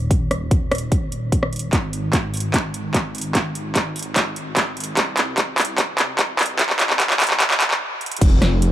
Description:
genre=future bass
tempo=148 BPM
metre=4/4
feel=half-time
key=unclear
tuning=A4 = 438 Hz
part: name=wide detuned saw bass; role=bass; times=0.0-8.7 s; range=Eb1 to C2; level=-26 LUFS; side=equal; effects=chorus, tube saturation, sidechain pumping
part: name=big-room dance drum kit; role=drums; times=0.1-8.7 s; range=crash cymbal, handclaps, hi-hat, rim click, snare drum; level=-19 LUFS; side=equal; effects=small room ambience
part: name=electronic kick drum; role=drums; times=0.1-8.3 s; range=none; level=-20 LUFS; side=equal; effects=small room ambience
room=light reverb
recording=dark, warm production, high-pass filter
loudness=-18 LUFS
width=side -12 dB against mid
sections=0.0-8.2 A section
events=build-up 0.0-8.2; filter sweep 0.0-8.2; drum fill 1.7-7.8, 8.0; stop 7.8-8.2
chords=none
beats=| 0.11 0.51 0.92 1.32 | 1.73 2.13 2.54 2.94 | 3.35 3.76 4.16 4.57 | 4.97 5.38 5.78 6.19 | 6.59 7.00 7.40 7.81 | 8.21 8.62

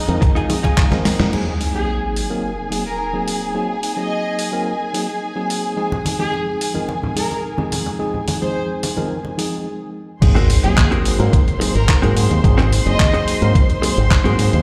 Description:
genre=nu-disco, nu disco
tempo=108 BPM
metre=4/4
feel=straight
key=Ab mixolydian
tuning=A4 = 439 Hz
part: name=tine electric piano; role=accompaniment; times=0.0-14.6 s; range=F3 to Bb4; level=-25 LUFS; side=equal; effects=vintage 12-bit sampler grit, digital delay
part: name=rich symphonic string section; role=sustained chords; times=0.0-14.6 s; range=Eb4 to C6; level=-29 LUFS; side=equal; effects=sidechain pumping, low-pass filter
part: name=direct-recorded clean electric guitar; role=riff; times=0.1-1.0, 10.4-14.5 s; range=C4 to C5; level=-28 LUFS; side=equal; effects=lush chorus, digital delay
part: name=fingered electric bass with an envelope filter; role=bass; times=0.1-1.3, 10.2-14.6 s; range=Gb1 to Ab2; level=-19 LUFS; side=equal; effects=tube saturation
part: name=dusty soul sampler-style drum kit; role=drums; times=0.1-14.6 s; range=crash cymbal, handclaps, hi-hat, snare drum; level=-27 LUFS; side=equal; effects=studio reverb
part: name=congas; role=percussion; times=0.1-1.3, 5.9-9.4 s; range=none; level=-29 LUFS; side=equal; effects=none
part: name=electronic kick drum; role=drums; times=0.2-0.9, 10.2-14.2 s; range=none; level=-17 LUFS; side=equal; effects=studio reverb
part: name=sub drop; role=sound effects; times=1.3-3.6, 10.3-12.4 s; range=none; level=-25 LUFS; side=equal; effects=none
part: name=warm symphonic violin section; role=melody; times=1.7-13.4 s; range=Ab4 to Eb5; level=-29 LUFS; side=equal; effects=digital delay
room=light reverb, digital ambience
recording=played on a big sound system in a bare room, large studio reverb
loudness=-18 LUFS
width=mono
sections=0.0-1.3 A section; 1.3-10.2 B section; 10.2-14.6 C section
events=drum fill 0.9-1.3; band accent 1.2; impact 1.3-3.6, 10.2-12.4; stop 9.7-10.2; drop 10.2-14.6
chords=0.0 Fm7; 1.3 Ab9; 5.8 Fm7; 10.2 Ab9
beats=0.22 0.78 | 1.33 1.89 2.44 3.00 | 3.56 4.11 4.67 5.22 | 5.78 6.33 6.89 7.44 | 8.00 8.55 9.11 9.67 | 10.22 10.78 11.33 11.89 | 12.44 13.00 13.55 14.11

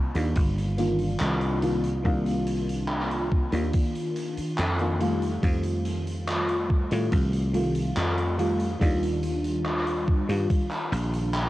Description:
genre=vaporwave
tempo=71 BPM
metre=4/4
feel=straight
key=C dorian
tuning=A4 = 444 Hz
part: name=FM electric piano with soft pad layer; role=accompaniment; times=0.0-11.5 s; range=Eb3 to F4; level=-28 LUFS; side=equal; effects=phaser, analog chorus, cassette tape, analog delay
part: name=dry thumbed slap bass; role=bass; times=0.0-11.5 s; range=G1 to A2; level=-28 LUFS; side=equal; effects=tube saturation
part: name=gated 80s drum kit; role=drums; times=0.1-11.5 s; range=handclaps, hi-hat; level=-33 LUFS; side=equal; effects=cassette tape
part: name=electronic kick drum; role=drums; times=0.4-10.7 s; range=none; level=-24 LUFS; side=equal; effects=cassette tape
room=light reverb, small room ambience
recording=home recording on cassette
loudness=-23 LUFS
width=side -16 dB against mid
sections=0.0-11.5 A section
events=none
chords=0.0 Cm11; 5.0 F9; 8.8 Ebmaj9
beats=0.36 1.21 | 2.05 2.90 3.74 4.59 | 5.43 6.28 7.12 7.97 | 8.81 9.66 10.50 11.35

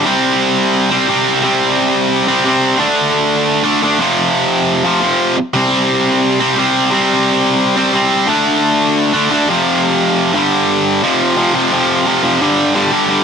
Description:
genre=punk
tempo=175 BPM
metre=4/4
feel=straight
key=unclear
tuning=A4 = 440 Hz
part: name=tight distorted guitar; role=solo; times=0.0-13.2 s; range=F2 to D4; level=-11 LUFS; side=equal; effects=distortion
room=light reverb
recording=none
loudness=-11 LUFS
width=side -6 dB against mid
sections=0.1-11.0 A section; 11.0-13.2 B section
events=none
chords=0.1 C5; 2.8 D5; 4.0 F5; 5.5 C5; 8.3 D5; 9.5 F5; 10.4 G5; 11.0 F5; 12.4 G5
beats=| 0.06 0.41 0.75 1.09 | 1.44 1.78 2.12 2.46 | 2.81 3.15 3.49 3.83 | 4.18 4.52 4.86 5.21 | 5.55 5.89 6.24 6.58 | 6.92 7.26 7.61 7.95 | 8.29 8.64 8.98 9.32 | 9.67 10.01 10.35 10.70 | 11.04 11.38 11.73 12.07 | 12.42 12.76 13.10

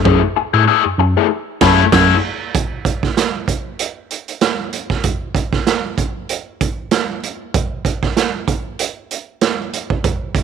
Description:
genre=funk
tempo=96 BPM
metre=4/4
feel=swing 56% on 16ths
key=F# minor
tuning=A4 = 437 Hz
part: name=raw garage guitar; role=accompaniment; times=0.0-2.2 s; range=A3 to G#4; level=-14 LUFS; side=left 14 dB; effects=wah, overdrive
part: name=mellow tine electric piano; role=bass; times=0.0-2.1 s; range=F#2 to A2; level=-15 LUFS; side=equal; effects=medium stereo tremolo
part: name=raw garage drum kit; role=drums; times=0.1-10.4 s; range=crash cymbal, hi-hat, kick drum, snare drum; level=-17 LUFS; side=right 6 dB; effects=none
room=studio reverb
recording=1960s-style stereo with parts hard left and right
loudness=-15 LUFS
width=side -6 dB against mid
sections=0.0-2.5 A section; 2.5-10.4 B section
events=drum fill 0.1-2.5; band accent 1.3-2.5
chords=0.0 F#m9; 2.5 N.C.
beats=| 0.05 0.68 1.30 1.92 | 2.55 3.17 3.80 4.42 | 5.05 5.67 6.30 6.92 | 7.55 8.17 8.79 9.42 | 10.04

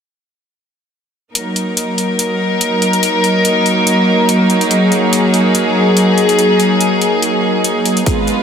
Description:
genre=heavy wobble dubstep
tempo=143 BPM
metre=4/4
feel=swing 54% on 16ths, half-time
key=Eb minor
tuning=A4 = 443 Hz
part: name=warm studio string section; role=sustained chords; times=1.4-8.4 s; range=Gb3 to Cb5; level=-11 LUFS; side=equal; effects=sidechain pumping
part: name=electronic hi-hat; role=drums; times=1.4-8.4 s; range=none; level=-19 LUFS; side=left 1 dB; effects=none
part: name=electronic kick drum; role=drums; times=8.1-8.2 s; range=none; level=-17 LUFS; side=right 1 dB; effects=none
room=wet huge ambient reverb, RT60 7.6 s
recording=dreamy mix soaked in reverb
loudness=-11 LUFS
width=side -7 dB against mid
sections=1.4-8.4 A section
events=none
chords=1.4 Ebm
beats=| 1.35 1.77 2.19 2.61 | 3.03 3.45 3.87 4.29 | 4.71 5.13 5.55 5.97 | 6.39 6.81 7.23 7.65 | 8.06

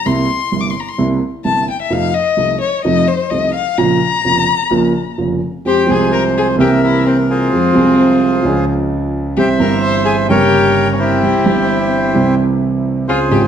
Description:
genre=tango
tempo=129 BPM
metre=4/4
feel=rubato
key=Bb harmonic minor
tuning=A4 = 442 Hz
part: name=rich violin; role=second line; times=0.0-13.4 s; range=C4 to D6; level=-17 LUFS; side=left 6 dB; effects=none
part: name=dark concert grand piano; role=accompaniment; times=0.1-13.5 s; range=F1 to Ab4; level=-14 LUFS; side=right 3 dB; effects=none
part: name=bandoneon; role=melody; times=5.7-13.5 s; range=E4 to C6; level=-16 LUFS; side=left 1 dB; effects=slapback echo
room=wet large studio reverb, RT60 1.1 s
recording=dark, warm production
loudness=-12 LUFS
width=side -8 dB against mid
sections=0.0-5.7 A section; 5.7-13.5 B section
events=violin solo 0.0-5.7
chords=0.1 C7; 1.9 F7; 3.8 Bbm; 5.7 Fmadd9; 6.6 C7; 7.5 Fm; 8.4 Db; 9.4 C; 10.3 Gdim; 11.2 C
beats=| 0.05 0.52 0.98 1.45 | 1.92 2.38 2.85 3.31 | 3.78 4.25 4.72 5.19 | 5.66 6.12 6.59 7.05 | 7.52 7.98 8.45 8.91 | 9.37 9.84 10.30 10.76 | 11.23 11.69 12.15 12.62 | 13.09

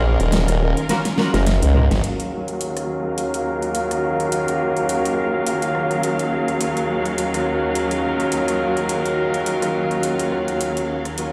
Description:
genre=glitch hop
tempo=105 BPM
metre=4/4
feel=swing 56% on 16ths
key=Eb minor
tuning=A4 = 440 Hz
part: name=clear studio string section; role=sustained chords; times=0.0-11.3 s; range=Eb2 to F5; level=-26 LUFS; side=equal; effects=low-pass filter
part: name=mellow horn section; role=stabs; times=0.0-11.3 s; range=Eb3 to Bb4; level=-24 LUFS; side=equal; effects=low-pass filter, dub echo
part: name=formant-sweep wobble bass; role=bass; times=0.0-2.0 s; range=Eb1 to Db2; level=-18 LUFS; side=equal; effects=chorus
part: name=dubstep drum kit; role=drums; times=0.2-11.3 s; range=hi-hat, rim click, snare drum, toms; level=-28 LUFS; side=equal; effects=studio reverb
room=moderate plate reverb, RT60 2.0 s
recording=played on a big sound system in a bare room, large studio reverb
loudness=-21 LUFS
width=mono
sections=0.0-2.0 A section; 2.0-11.3 B section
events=drum fill 0.9-2.0; band accent 1.9; filter sweep on horn section 2.0-11.3; filter sweep on string section 2.0-11.3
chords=0.0 Ebm9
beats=0.32 0.89 1.47 | 2.04 2.61 3.18 3.75 | 4.32 4.89 5.46 6.04 | 6.61 7.18 7.75 8.32 | 8.89 9.46 10.04 10.61 | 11.18

